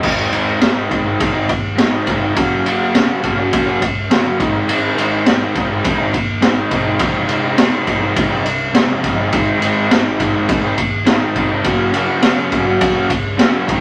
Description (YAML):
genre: indie rock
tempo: 103 BPM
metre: 4/4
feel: straight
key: unclear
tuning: A4 = 441 Hz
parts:
  - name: crunchy overdriven guitar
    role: riff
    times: 0.0-13.8 s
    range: F2 to Gb4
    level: -19 LUFS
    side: equal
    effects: none
  - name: fuzz picked electric bass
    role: bass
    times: 0.0-13.8 s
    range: Fb1 to Eb2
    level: -32 LUFS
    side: equal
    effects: none
  - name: raw garage drum kit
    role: drums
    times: 0.0-13.8 s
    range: crash cymbal, kick drum, ride cymbal, snare drum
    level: -18 LUFS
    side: equal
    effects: none
room: moderate studio ambience, RT60 0.5 s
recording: vinyl crackle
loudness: -16 LUFS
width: mono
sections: 0.0-13.8 A section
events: none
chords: 0.0 Ab; 2.4 Gb; 4.4 Ab; 7.0 Fm7; 9.3 Ab; 11.6 Gb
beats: | 0.04 0.62 1.20 1.78 | 2.36 2.94 3.52 4.10 | 4.68 5.26 5.85 6.43 | 7.01 7.59 8.17 8.75 | 9.33 9.91 10.49 11.07 | 11.65 12.23 12.81 13.39